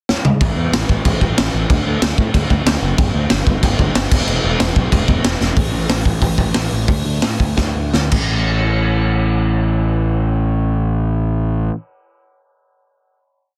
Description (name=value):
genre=punk rock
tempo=158-187 BPM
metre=4/4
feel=straight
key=unclear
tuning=A4 = 440 Hz
part: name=raw garage drum kit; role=drums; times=0.1-8.2 s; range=crash cymbal, hi-hat, kick drum, snare drum, toms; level=-19 LUFS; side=equal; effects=none
part: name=fuzz picked electric bass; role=bass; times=0.4-11.7 s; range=E1 to A2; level=-20 LUFS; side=equal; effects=overdrive
room=little or no reverb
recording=dense, heavily limited modern master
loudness=-17 LUFS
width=mono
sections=0.0-0.4 pickup bar; 0.4-5.6 riff; 5.6-8.3 outro; 8.3-11.3 final hit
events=drum fill 0.1-0.4, 5.4, 7.6-8.3; slowing down 5.6-8.3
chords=none